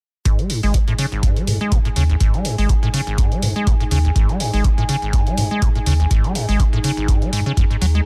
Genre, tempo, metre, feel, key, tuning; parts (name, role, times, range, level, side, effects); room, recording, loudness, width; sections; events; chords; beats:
acid house; 123 BPM; 4/4; swing 55% on 16ths; A4 = 438 Hz
acid bass, square; riff; 0.3-8.0 s; G#1 to G#3; -24 LUFS; equal; overdrive, subtle chorus, vintage 12-bit sampler grit, sidechain pumping, delay
warm sub bass; bass; 0.3-8.0 s; G#1 to G#2; -20 LUFS; equal; tube saturation, sidechain pumping
electronic hi-hat; drums; 0.3-8.0 s; -30 LUFS; equal
electronic kick drum; drums; 0.3-7.7 s; -20 LUFS; equal; overdrive
warbly tape-like pad; texture; 0.7-8.1 s; D#4 to G#5; -32 LUFS; equal; chorus, built-in reverb, sidechain pumping
little or no reverb; -18 LUFS; mono
0.3-8.1 A section
0.3 G#5
| 0.25 0.74 1.23 1.72 | 2.21 2.69 3.18 3.67 | 4.16 4.64 5.13 5.62 | 6.11 6.60 7.08 7.57